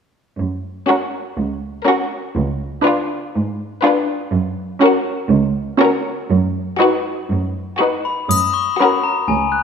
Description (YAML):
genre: cinematic, playful, whimsical film cue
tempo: 121 BPM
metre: 4/4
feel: straight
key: F# major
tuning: A4 = 440 Hz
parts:
  - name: muted chamber cello section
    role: bass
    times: 0.4-9.6 s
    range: C#2 to G#2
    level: -19 LUFS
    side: right 4 dB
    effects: none
  - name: muted chamber violin section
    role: melody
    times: 0.9-9.2 s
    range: A#4 to B4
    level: -21 LUFS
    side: left 3 dB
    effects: none
  - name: muted chamber violin section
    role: second line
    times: 0.9-9.2 s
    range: E#4 to F#4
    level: -20 LUFS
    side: left 2 dB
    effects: none
  - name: muted chamber viola section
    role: accompaniment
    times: 0.9-9.2 s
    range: C#4 to D#4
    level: -20 LUFS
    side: right 1 dB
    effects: none
  - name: glockenspiel with soft plastic mallets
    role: melody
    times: 8.1-9.6 s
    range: G#5 to F#6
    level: -16 LUFS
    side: left 6 dB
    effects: none
  - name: triangle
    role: percussion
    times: 8.3-9.3 s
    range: none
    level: -26 LUFS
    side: left 2 dB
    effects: none
room: wet scoring stage reverb, RT60 1.7 s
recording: none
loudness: -16 LUFS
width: side -6 dB against mid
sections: 0.4-8.3 A section; 8.3-9.6 B section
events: none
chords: 0.4 F#; 2.4 C#7b9; 4.3 F#; 6.3 B/F#; 8.3 F#